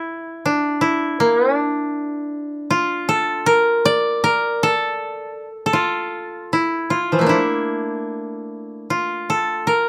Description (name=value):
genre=japanese traditional, Japanese chamber music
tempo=73-82 BPM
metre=4/4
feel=rubato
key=A miyako bushi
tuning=A4 = 440 Hz
part: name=koto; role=solo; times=0.0-9.9 s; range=E3 to D5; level=-20 LUFS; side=equal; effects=none
room=light reverb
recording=close, detailed microphones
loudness=-20 LUFS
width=mono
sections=0.0-9.9 A section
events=none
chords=none